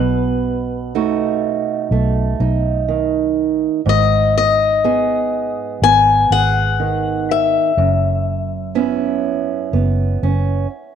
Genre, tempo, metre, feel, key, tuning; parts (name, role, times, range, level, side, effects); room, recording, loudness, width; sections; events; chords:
folk; 61 BPM; 4/4; straight; A4 = 442 Hz
picked swing-style acoustic guitar; melody; 0.0-10.7 s; B4 to G#5; -16 LUFS; left 6 dB
fingerpicked old ladder-braced acoustic guitar; accompaniment; 0.0-10.9 s; F#2 to G#4; -20 LUFS; right 10 dB
vintage muted fingered electric bass; bass; 0.0-10.7 s; F#1 to B1; -19 LUFS; equal
wet spring reverb, RT60 1.9 s; 1960s-style stereo with parts hard left and right; -15 LUFS; side -8 dB against mid
0.0-10.9 A section
stop 10.7
0.0 B7; 3.9 G#m; 7.8 F#7sus4